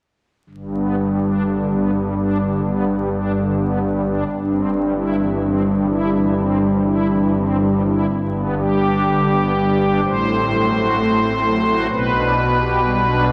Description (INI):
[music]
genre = classical, chorale-style piece for pipe organ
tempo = 63 BPM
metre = 4/4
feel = uneven beats, rubato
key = G major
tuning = A4 = 440 Hz
[part]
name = pipe organ, strings celeste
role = solo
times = 0.5-13.3 s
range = G1 to C5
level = -18 LUFS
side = equal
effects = none
[sound]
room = wet church reverb, RT60 3.6 s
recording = vinyl crackle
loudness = -18 LUFS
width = mono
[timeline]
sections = 0.5-8.1 A section; 8.1-13.3 B section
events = none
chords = 0.5 G; 4.3 C/G; 8.1 G; 10.0 F#dim/A; 11.9 G/B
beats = | 0.49 1.45 2.40 3.33 | 4.26 5.18 6.12 7.10 | 8.10 9.06 10.05 10.99 | 11.91 12.83